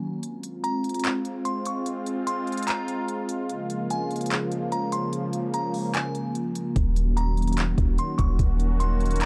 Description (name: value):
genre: hip hop, atmospheric cloud-rap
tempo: 147 BPM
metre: 4/4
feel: half-time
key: Bb minor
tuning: A4 = 443 Hz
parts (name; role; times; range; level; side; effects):
- sweeping resonant pad; sustained chords; 0.0-9.3 s; Db3 to Gb4; -31 LUFS; equal; subtle chorus, sidechain pumping
- smooth R&B drum kit; drums; 0.2-9.3 s; handclaps, hi-hat, kick drum; -30 LUFS; equal; none
- delicate synth tine bell; melody; 0.6-9.3 s; Ab5 to Db6; -35 LUFS; equal; chorus, low-pass filter, digital delay
- soft 808-style bass; bass; 6.8-9.3 s; Eb1; -26 LUFS; equal; none
room: little or no reverb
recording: dark, warm production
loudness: -27 LUFS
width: mono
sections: 0.0-9.3 A section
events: break 0.0; kick muted 0.2-6.8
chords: 0.2 Fm; 3.5 Bbm7; 6.8 Ebm7